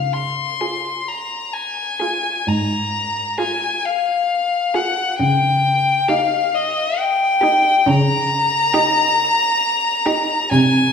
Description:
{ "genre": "classical, slow romantic movement for string quartet", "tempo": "44 BPM (dotted quarters)", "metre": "12/8", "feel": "rubato", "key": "unclear", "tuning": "A4 = 439 Hz", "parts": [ { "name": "rich violin", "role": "melody", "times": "0.0-10.9 s", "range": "Eb5 to C6", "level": "-17 LUFS", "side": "left 3 dB", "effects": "none" }, { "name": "rich cello", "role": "bass", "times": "0.0-10.9 s", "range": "Ab2 to Db3", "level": "-19 LUFS", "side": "right 1 dB", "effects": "none" }, { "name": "warm violin", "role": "second line", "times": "0.6-10.4 s", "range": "G4 to Ab4", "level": "-29 LUFS", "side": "right 1 dB", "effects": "none" }, { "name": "rich viola", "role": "accompaniment", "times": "0.6-10.4 s", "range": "Eb4 to F4", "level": "-26 LUFS", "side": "right 4 dB", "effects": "none" } ], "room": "wet recital hall reverb, RT60 1.7 s", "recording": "recorded in a church or concert hall, vinyl crackle", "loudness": "-16 LUFS", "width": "side -6 dB against mid", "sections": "0.0-10.9 A section", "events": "none", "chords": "0.0 Db; 5.2 Eb7/Db", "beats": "1.08 2.47 3.85 | 5.19 6.54 7.87 9.18 | 10.52" }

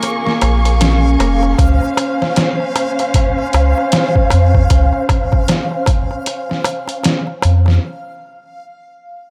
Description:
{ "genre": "trip hop", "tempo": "77 BPM", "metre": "4/4", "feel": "swing 60% on 16ths", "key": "unclear", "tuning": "A4 = 439 Hz", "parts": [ { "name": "dark symphonic violin section", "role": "sustained chords", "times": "0.0-7.8 s", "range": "Bb3 to Db6", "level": "-21 LUFS", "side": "equal", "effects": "low-pass filter" }, { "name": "concert harp", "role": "arpeggios", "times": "0.0-4.4 s", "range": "Bb3 to F4", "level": "-24 LUFS", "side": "equal", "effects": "vintage 12-bit sampler grit, digital delay" }, { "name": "trip hop sampler-style drum kit", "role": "drums", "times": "0.0-7.8 s", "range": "hi-hat, kick drum, snare drum", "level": "-18 LUFS", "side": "equal", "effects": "overdrive" }, { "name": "darbuka", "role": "percussion", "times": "0.0-7.8 s", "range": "none", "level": "-25 LUFS", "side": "equal", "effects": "none" }, { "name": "backwards swelling texture", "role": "texture", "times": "0.0-7.8 s", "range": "F5", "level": "-30 LUFS", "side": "equal", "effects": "built-in reverb" }, { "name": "soft dub sub bass", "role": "bass", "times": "0.4-7.8 s", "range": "F1 to F2", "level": "-14 LUFS", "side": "equal", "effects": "none" } ], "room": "light reverb, small room reverb", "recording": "none", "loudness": "-14 LUFS", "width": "mono", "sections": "0.0-9.3 A section", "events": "filter sweep on violin section 0.0-7.8", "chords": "0.0 Bbm7; 1.6 Dbmaj7; 7.8 N.C.", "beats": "0.03 0.80 | 1.58 2.36 3.14 3.92 | 4.70 5.48 6.26 7.04 | 7.82" }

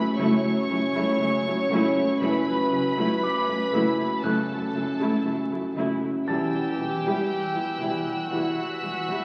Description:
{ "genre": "cinematic, suspense film score", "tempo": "59 BPM", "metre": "4/4", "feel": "straight", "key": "unclear", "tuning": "A4 = 438 Hz", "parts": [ { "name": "warm studio violin section", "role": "melody", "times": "0.0-9.2 s", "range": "F#5 to C#6", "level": "-35 LUFS", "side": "equal", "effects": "none" }, { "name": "warm symphonic violin section", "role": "second line", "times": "0.0-9.2 s", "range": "F#4 to C#5", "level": "-32 LUFS", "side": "equal", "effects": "none" }, { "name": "concert harp", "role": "riff", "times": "0.0-9.2 s", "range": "E2 to F#2", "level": "-31 LUFS", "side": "equal", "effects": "none" }, { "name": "warm grand piano", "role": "texture", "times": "0.0-9.2 s", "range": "A5 to A6", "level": "-37 LUFS", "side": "equal", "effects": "none" }, { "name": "dark symphonic viola section", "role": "accompaniment", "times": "0.2-9.2 s", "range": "G3 to E4", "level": "-29 LUFS", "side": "equal", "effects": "none" }, { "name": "rich symphonic cello section", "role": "bass", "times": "0.2-9.2 s", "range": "E2 to F#2", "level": "-40 LUFS", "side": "equal", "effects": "none" }, { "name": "warm chamber double bass section", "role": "bass", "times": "0.2-8.9 s", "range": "E1 to F#1", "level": "-42 LUFS", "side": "equal", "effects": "none" }, { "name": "warm studio violin section", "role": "texture", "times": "6.3-9.2 s", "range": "E6 to B6", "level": "-38 LUFS", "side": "equal", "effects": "none" } ], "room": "wet scoring stage reverb, RT60 1.7 s", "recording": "very old 78 rpm record, vinyl crackle", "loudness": "-25 LUFS", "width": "mono", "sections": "0.0-9.2 A section", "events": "none", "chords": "0.0 F#m7; 6.3 Emadd9", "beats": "0.17 1.19 | 2.21 3.22 4.24 5.26 | 6.28 7.29 8.31" }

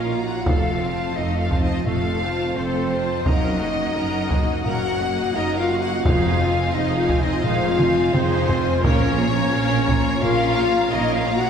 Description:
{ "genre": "cinematic, epic orchestral film score", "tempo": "86 BPM", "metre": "4/4", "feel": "straight", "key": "unclear", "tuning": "A4 = 440 Hz", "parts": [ { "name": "clear symphonic violin section", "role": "melody", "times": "0.0-11.5 s", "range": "C5 to Gb5", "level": "-28 LUFS", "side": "left 3 dB", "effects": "none" }, { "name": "silver concert flute", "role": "second line", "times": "0.0-11.5 s", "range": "C5 to Gb5", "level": "-29 LUFS", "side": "equal", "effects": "none" }, { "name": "warm symphonic violin section", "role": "second line", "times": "0.0-11.5 s", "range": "A4 to Bb5", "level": "-32 LUFS", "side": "left 2 dB", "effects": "none" }, { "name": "bright symphonic viola section", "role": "accompaniment", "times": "0.0-11.5 s", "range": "Gb3 to Bb4", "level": "-28 LUFS", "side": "equal", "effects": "none" }, { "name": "mellow French horn section", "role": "sustained chords", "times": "0.0-11.5 s", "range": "C4 to Gb4", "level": "-24 LUFS", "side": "left 2 dB", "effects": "none" }, { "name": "rich studio cello section", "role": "bass", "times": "0.0-11.5 s", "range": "F2 to Bb2", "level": "-27 LUFS", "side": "right 2 dB", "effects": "none" }, { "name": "rich symphonic double bass section", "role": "bass", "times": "0.0-11.5 s", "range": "F1 to Bb1", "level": "-28 LUFS", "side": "right 4 dB", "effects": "none" }, { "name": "warm trombone section", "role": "sustained chords", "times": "0.5-10.5 s", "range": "C3 to Bb3", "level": "-34 LUFS", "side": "right 3 dB", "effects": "none" }, { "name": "solo taiko drums", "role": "drums", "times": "0.5-10.6 s", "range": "none", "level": "-24 LUFS", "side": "equal", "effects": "none" }, { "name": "timpani", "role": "percussion", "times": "6.0-9.8 s", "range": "F2 to Bb2", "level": "-30 LUFS", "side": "right 1 dB", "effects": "none" } ], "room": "wet concert hall reverb, RT60 2.3 s", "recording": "recorded in a church or concert hall", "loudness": "-18 LUFS", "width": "side -7 dB against mid", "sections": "0.0-11.5 A section", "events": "drum fill 7.8-8.8", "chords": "0.5 F; 3.3 Ebm/Gb; 6.0 Fm7; 8.8 Bbm", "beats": "| 0.47 1.16 1.86 2.56 | 3.25 3.95 4.65 5.35 | 6.05 6.74 7.44 8.14 | 8.84 9.54 10.23 10.93" }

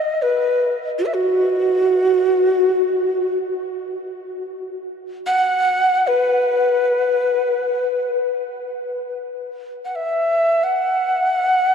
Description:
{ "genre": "world meditative, free-time meditation music", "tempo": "free time", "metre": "none", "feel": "none", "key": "unclear", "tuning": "A4 = 440 Hz", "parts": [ { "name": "breathy mellow Native American-style cedar flute", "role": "solo", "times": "0.0-11.7 s", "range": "F#4 to F#5", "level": "-17 LUFS", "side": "equal", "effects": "none" } ], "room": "wet huge ambient reverb, RT60 7.7 s", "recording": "dark, warm production, lossy compression artefacts", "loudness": "-16 LUFS", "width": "side -7 dB against mid", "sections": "0.0-8.8 A section; 8.8-11.7 A section", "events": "none", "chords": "none", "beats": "free time" }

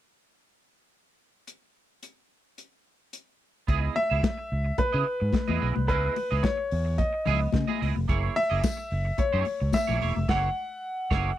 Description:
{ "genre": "disco", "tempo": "109 BPM", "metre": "4/4", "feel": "straight", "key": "C# dorian", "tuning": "A4 = 442 Hz", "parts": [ { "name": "warm soul drum kit", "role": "drums", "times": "1.5-11.3 s", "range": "crash cymbal, hi-hat, kick drum, snare drum", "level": "-28 LUFS", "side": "equal", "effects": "none" }, { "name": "clean electric guitar", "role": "accompaniment", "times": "3.7-11.3 s", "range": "A#3 to E5", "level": "-31 LUFS", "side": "right 10 dB", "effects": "ensemble chorus" }, { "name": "fingered electric bass", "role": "bass", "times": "3.7-11.3 s", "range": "E1 to C#3", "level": "-27 LUFS", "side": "equal", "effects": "none" }, { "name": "clear concert grand piano", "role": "melody", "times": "4.0-11.4 s", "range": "B4 to F#5", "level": "-29 LUFS", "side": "left 1 dB", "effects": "none" }, { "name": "congas", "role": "percussion", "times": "4.0-10.3 s", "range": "none", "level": "-33 LUFS", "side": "left 10 dB", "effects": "none" }, { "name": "tambourine", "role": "percussion", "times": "8.6-9.9 s", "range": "none", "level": "-42 LUFS", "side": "left 7 dB", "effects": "none" } ], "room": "little or no reverb", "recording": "dry, close 1970s-style studio recording", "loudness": "-24 LUFS", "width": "side -13 dB against mid", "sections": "1.5-3.7 A section; 3.7-11.4 B section", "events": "band accent 10.3-11.4", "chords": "1.5 N.C.; 3.7 C#m9; 8.1 F#9", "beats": "| 1.47 2.02 2.58 3.13 | 3.68 4.23 4.78 5.34 | 5.89 6.44 6.99 7.54 | 8.09 8.64 9.19 9.74 | 10.29 10.84" }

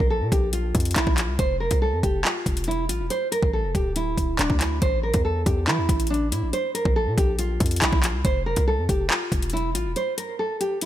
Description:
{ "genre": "hip hop, drill", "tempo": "140 BPM", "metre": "4/4", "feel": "half-time", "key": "unclear", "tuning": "A4 = 440 Hz", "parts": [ { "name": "nylon-string guitar", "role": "melody", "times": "0.0-10.9 s", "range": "D4 to C5", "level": "-25 LUFS", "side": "right 1 dB", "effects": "low-pass filter, digital delay" }, { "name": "hard-hitting 808-style bass", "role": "bass", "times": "0.0-10.0 s", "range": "D1 to E3", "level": "-25 LUFS", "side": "equal", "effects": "none" }, { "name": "drill drum kit", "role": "drums", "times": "0.0-10.9 s", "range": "handclaps, hi-hat, kick drum", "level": "-23 LUFS", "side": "equal", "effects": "none" } ], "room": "digital ambience", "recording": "none", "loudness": "-21 LUFS", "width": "side -12 dB against mid", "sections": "0.0-10.9 A section", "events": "break 10.0-10.9", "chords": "0.0 Bb5; 1.4 F5; 3.1 D5; 4.8 A5; 6.5 Bb5; 8.2 F5; 10.0 N.C.", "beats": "0.10 0.53 0.96 | 1.39 1.82 2.25 2.67 | 3.10 3.53 3.96 4.39 | 4.82 5.25 5.67 6.10 | 6.53 6.96 7.39 7.82 | 8.25 8.68 9.10 9.53 | 9.96 10.39 10.82" }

